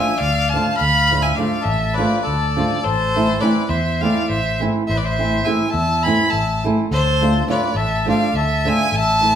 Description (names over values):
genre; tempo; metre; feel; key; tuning
balkan folk, Balkan wedding band; 206 BPM (eighths); 7/8; straight; unclear; A4 = 438 Hz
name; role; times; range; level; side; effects
clear violin; melody; 0.0-9.4 s; C5 to B5; -20 LUFS; equal; none
accordion; second line; 0.0-9.4 s; A4 to G#5; -24 LUFS; left 4 dB; none
flamenco guitar; accompaniment; 0.0-9.4 s; E3 to F4; -20 LUFS; right 2 dB; none
fingered electric bass; bass; 0.2-9.4 s; A1 to E2; -22 LUFS; equal; none
room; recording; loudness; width
wet large studio reverb, RT60 0.8 s; band playing live in one room; -16 LUFS; side -9 dB against mid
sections
0.0-9.4 A section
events
none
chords
0.0 Dm; 2.9 Am; 6.9 Dm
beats
0.22 0.51 | 0.81 1.10 1.39 1.69 1.98 2.27 2.56 | 2.85 3.15 3.44 3.73 4.02 4.31 4.60 | 4.89 5.18 5.47 5.76 6.05 6.34 6.63 | 6.92 7.21 7.50 7.79 8.07 8.36 8.65 | 8.94 9.22